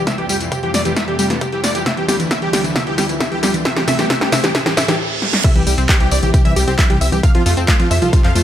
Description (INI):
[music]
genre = uplifting trance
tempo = 134 BPM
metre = 4/4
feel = straight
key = unclear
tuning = A4 = 439 Hz
[part]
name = dense compressed supersaw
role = melody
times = 0.0-8.4 s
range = F4 to F5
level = -21 LUFS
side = equal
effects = sidechain pumping, low-pass filter, dub echo
[part]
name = lush unison pad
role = sustained chords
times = 0.0-8.4 s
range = D2 to C5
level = -25 LUFS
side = equal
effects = chorus, sidechain pumping
[part]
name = analog pluck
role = arpeggios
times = 0.0-8.4 s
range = C3 to C4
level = -22 LUFS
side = left 1 dB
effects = chorus, sidechain pumping
[part]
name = riser and reverse cymbal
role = sound effects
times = 2.0-5.4 s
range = none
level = -26 LUFS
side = right 2 dB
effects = none
[part]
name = electronic kick drum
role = drums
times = 0.1-8.2 s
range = none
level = -14 LUFS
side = equal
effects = overdrive, high-pass filter on kick
[part]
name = punchy analog drum machine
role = drums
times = 0.1-8.4 s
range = crash cymbal, handclaps, hi-hat, snare drum, tambourine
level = -19 LUFS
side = equal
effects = overdrive, sidechain pumping on hats, sidechain pumping on perc, sidechain pumping on cymbals
[part]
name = plucky analog bass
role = bass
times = 5.6-8.4 s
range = Bb1 to F2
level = -17 LUFS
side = equal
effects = sidechain pumping
[sound]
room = light reverb, digital ambience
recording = none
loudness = -13 LUFS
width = side -11 dB against mid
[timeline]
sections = 0.0-5.4 A section; 5.4-8.4 B section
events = build-up 0.0-5.4; drum fill 0.0-5.0, 5.2; reverse cymbal 4.5-5.4; stop 5.0-5.4; drop 5.4-8.4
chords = 0.1 F; 1.9 Dmadd9; 3.7 Am; 5.4 C; 7.2 F